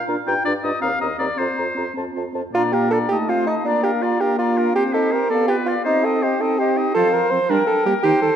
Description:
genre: quick classical-period movement for wind quintet.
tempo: 109 BPM (dotted quarters).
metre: 6/8.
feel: straight.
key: Bb major.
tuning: A4 = 444 Hz.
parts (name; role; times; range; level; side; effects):
clear oboe; second line; 0.0-8.4 s; G4 to G5; -25 LUFS; left 2 dB; none.
mellow hollow silver concert flute; melody; 0.1-8.4 s; Eb5 to Bb5; -27 LUFS; left 7 dB; none.
dark French horn; accompaniment; 0.1-8.3 s; Bb2 to D4; -26 LUFS; left 1 dB; none.
warm clarinet; accompaniment; 0.1-8.3 s; Bb3 to G4; -28 LUFS; right 7 dB; none.
warm bassoon; bass; 0.1-8.4 s; Eb2 to C5; -20 LUFS; right 2 dB; none.
room: wet concert hall reverb, RT60 1.8 s.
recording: none.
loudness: -17 LUFS.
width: side -9 dB against mid.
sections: 0.0-2.5 A section; 2.5-8.4 B section.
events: none.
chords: 0.3 Gm7; 0.8 Cm7/Eb; 1.4 Fsus4; 2.5 Bb; 3.1 F7/A; 3.6 Bb; 4.7 Cm; 5.3 G7/B; 5.9 Cm; 6.9 F; 7.5 Gm.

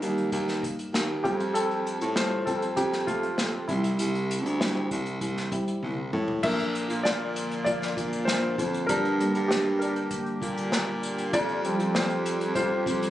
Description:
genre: piano-driven pop.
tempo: 98 BPM.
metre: 4/4.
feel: straight.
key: F major.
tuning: A4 = 440 Hz.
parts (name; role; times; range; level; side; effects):
warm concert grand piano; accompaniment; 0.0-13.1 s; D3 to E5; -28 LUFS; left 1 dB; none.
warm baritone saxophone; bass; 0.0-13.1 s; C2 to Bb2; -29 LUFS; right 1 dB; none.
unplugged drum kit; drums; 0.0-13.1 s; crash cymbal, hi-hat, kick drum, snare drum, toms; -32 LUFS; equal; none.
chorused pulse-width pad; sustained chords; 6.4-13.1 s; D3 to G4; -33 LUFS; right 1 dB; none.
room: light reverb.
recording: recorded on a phone in the room, club reverb, compression, nothing above 10.5 kHz.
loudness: -25 LUFS.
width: side -13 dB against mid.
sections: 0.0-6.4 A section; 6.4-13.1 B section.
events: grand piano solo 0.0-6.4, 6.4-13.1; drum fill 5.8-6.4.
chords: 0.0 Eb; 1.2 Fadd9; 3.7 C; 6.4 Bb; 8.9 Gm; 11.3 Fsus2.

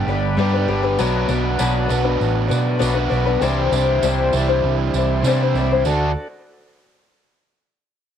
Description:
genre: folk rock and heartland rock.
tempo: 99 BPM.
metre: 4/4.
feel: straight.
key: D major.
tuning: A4 = 440 Hz.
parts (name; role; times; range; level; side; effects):
picked twelve-string acoustic guitar; accompaniment; 0.0-6.1 s; B2 to C5; -20 LUFS; left 8 dB; cassette tape.
bright tonewheel organ; sustained chords; 0.0-6.3 s; D4 to D5; -31 LUFS; right 1 dB; slow rotary speaker, cassette tape.
crunchy overdriven guitar; riff; 0.0-6.1 s; G2 to A4; -23 LUFS; right 9 dB; cassette tape.
hollow-body short-scale fingered electric bass; bass; 0.0-6.1 s; G1 to C3; -21 LUFS; right 1 dB; none.
tambourine; percussion; 1.0-6.1 s; none; -34 LUFS; right 12 dB; none.
room: light reverb, small room ambience.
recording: home recording on cassette.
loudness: -16 LUFS.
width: side -9 dB against mid.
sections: 0.0-5.9 A section; 5.9-8.2 B section.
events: none.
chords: 0.0 G; 1.0 Bm; 3.4 Cadd9; 5.9 D.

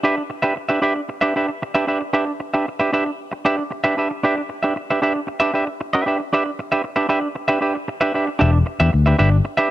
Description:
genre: disco.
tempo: 115 BPM.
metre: 4/4.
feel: straight.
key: unclear.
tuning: A4 = 441 Hz.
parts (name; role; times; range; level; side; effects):
semi-hollow electric guitar; accompaniment; 0.0-9.7 s; D4 to E5; -18 LUFS; right 2 dB; none.
fingered electric bass; bass; 8.4-9.4 s; E1 to E2; -15 LUFS; left 2 dB; none.
room: light reverb, digital ambience.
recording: none.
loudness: -17 LUFS.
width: side -15 dB against mid.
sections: 0.0-8.4 A section; 8.4-9.7 B section.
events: none.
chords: 0.0 Em7.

